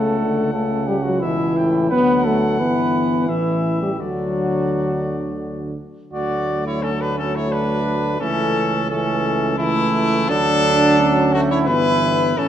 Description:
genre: classical, brass quintet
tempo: 87 BPM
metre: 3/4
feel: rubato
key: D major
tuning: A4 = 441 Hz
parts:
  - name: bright trumpet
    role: melody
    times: 0.0-12.5 s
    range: E4 to G5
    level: -24 LUFS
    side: left 4 dB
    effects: none
  - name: warm flugelhorn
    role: second line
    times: 0.0-12.5 s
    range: A3 to B4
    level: -23 LUFS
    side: right 5 dB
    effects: none
  - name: clear euphonium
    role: accompaniment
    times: 0.0-12.5 s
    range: A2 to F#3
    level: -25 LUFS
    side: right 3 dB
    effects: none
  - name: mellow French horn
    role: accompaniment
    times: 0.0-12.5 s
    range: E3 to D4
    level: -21 LUFS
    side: left 3 dB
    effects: none
  - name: mellow tuba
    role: bass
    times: 0.0-12.5 s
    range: G1 to D2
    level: -25 LUFS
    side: right 2 dB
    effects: none
room: moderate scoring stage reverb, RT60 1.9 s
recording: worn, warbling old tape, cassette tape, warbly pitch drift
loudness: -17 LUFS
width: side -10 dB against mid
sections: 0.0-6.1 A section; 6.1-12.5 A section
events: none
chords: 0.0 A/C#; 1.9 D; 2.6 Em/G; 3.3 A5; 4.0 D; 8.2 A/C#; 10.3 D; 11.7 Em/G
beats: 0.53 1.22 | 1.91 2.59 3.29 | 4.00 4.71 5.42 | 6.13 6.83 7.52 | 8.21 8.89 9.59 | 10.30 10.99 11.68 | 12.38

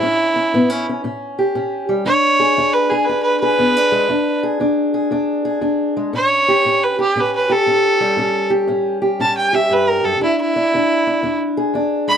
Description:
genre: acoustic country blues, solo or duo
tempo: 118 BPM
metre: 4/4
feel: swing 66% on 8ths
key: unclear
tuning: A4 = 442 Hz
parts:
  - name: clear fiddle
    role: melody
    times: 0.0-12.2 s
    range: E4 to B5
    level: -16 LUFS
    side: right 2 dB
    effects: none
  - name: fingerpicked steel-string acoustic guitar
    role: accompaniment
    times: 0.0-12.2 s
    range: E2 to G#4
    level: -18 LUFS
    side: left 1 dB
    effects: none
room: light reverb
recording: dry, close 1970s-style studio recording, lossy compression artefacts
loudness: -14 LUFS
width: side -8 dB against mid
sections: 0.0-12.2 A section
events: none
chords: 0.0 A7; 2.1 E7; 6.1 A7; 10.2 E7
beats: | 0.02 0.53 1.04 1.54 | 2.05 2.56 3.07 3.58 | 4.09 4.60 5.11 5.62 | 6.13 6.64 7.15 7.66 | 8.17 8.68 9.19 9.70 | 10.21 10.72 11.23 11.74

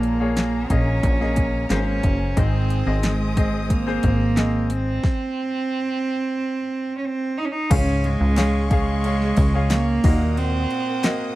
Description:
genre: piano-driven pop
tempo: 90 BPM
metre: 4/4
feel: straight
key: Db major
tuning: A4 = 440 Hz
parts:
  - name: rich cello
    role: melody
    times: 0.0-11.4 s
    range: Ab3 to Eb4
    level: -24 LUFS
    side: right 3 dB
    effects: none
  - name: clear concert grand piano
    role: accompaniment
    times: 0.0-11.4 s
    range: Ab2 to F5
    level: -28 LUFS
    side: left 3 dB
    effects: none
  - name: warm studio string section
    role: sustained chords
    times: 0.0-11.4 s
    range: Ab4 to Eb6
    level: -35 LUFS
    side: left 3 dB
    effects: none
  - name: plucky analog bass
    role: bass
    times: 0.0-10.7 s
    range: Gb1 to Eb2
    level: -22 LUFS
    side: equal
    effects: none
  - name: pop drum kit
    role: drums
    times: 0.0-11.2 s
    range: crash cymbal, handclaps, hi-hat, kick drum, ride cymbal, snare drum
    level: -21 LUFS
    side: equal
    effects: overdrive
  - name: group handclap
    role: percussion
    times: 8.4-11.2 s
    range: none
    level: -35 LUFS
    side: left 8 dB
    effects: none
room: light reverb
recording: dry, close 1970s-style studio recording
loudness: -19 LUFS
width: side -16 dB against mid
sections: 0.0-7.7 A section; 7.7-11.4 B section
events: stop 5.0-7.7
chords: 0.0 Bbm7; 2.4 Ab; 7.7 Db; 10.0 Ebm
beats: 0.37 1.04 1.70 | 2.37 3.04 3.71 4.37 | 5.04 5.71 6.37 7.04 | 7.71 8.37 9.04 9.71 | 10.37 11.04

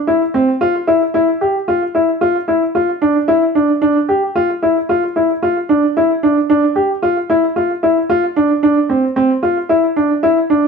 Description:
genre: progressive instrumental, progressive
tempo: 112 BPM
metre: 5/4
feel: straight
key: D minor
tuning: A4 = 440 Hz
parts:
  - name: warm baby grand piano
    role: solo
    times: 0.1-10.6 s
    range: C4 to G4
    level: -12 LUFS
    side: equal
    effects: slapback echo
room: light reverb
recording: close, detailed microphones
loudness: -12 LUFS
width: side -5 dB against mid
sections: 0.0-10.7 A section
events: none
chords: none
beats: 0.07 | 0.61 1.14 1.68 2.21 2.75 | 3.28 3.81 4.35 4.88 5.42 | 5.95 6.49 7.02 7.56 8.09 | 8.63 9.16 9.70 10.23

